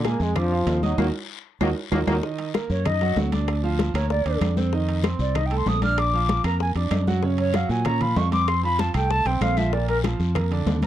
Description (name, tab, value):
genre	latin, salsa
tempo	192 BPM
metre	4/4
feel	straight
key	unclear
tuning	A4 = 439 Hz
part	bright trombone section	melody	0.0-2.2 s	Eb3 to Bb3	-26 LUFS	left 1 dB	none
part	bright concert grand piano	accompaniment	0.0-10.9 s	Bb2 to Eb6	-28 LUFS	right 7 dB	none
part	fingered electric bass	bass	0.0-10.9 s	Bb1 to Bb2	-24 LUFS	equal	none
part	claves	percussion	0.0-10.5 s	none	-38 LUFS	left 22 dB	none
part	guiro	percussion	0.0-10.9 s	none	-41 LUFS	left 15 dB	none
part	timbales	percussion	0.0-10.9 s	none	-34 LUFS	right 6 dB	none
part	bongos	percussion	0.1-10.9 s	none	-32 LUFS	left 12 dB	none
part	congas	percussion	0.1-10.9 s	none	-28 LUFS	left 2 dB	none
part	silver concert flute	melody	2.7-10.9 s	Bb4 to F6	-25 LUFS	equal	none
room	light reverb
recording	dry, close 1970s-style studio recording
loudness	-20 LUFS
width	side -12 dB against mid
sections	0.0-2.2 A section; 2.2-10.9 B section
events	band accent 1.0-2.2; drum fill 1.8-2.2; flute solo 2.2-10.9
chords	0.0 Bb7; 1.0 Ebm; 3.5 Bb/D; 4.7 F7; 6.0 Bb; 7.2 Gbmaj7; 8.5 F; 9.7 Bb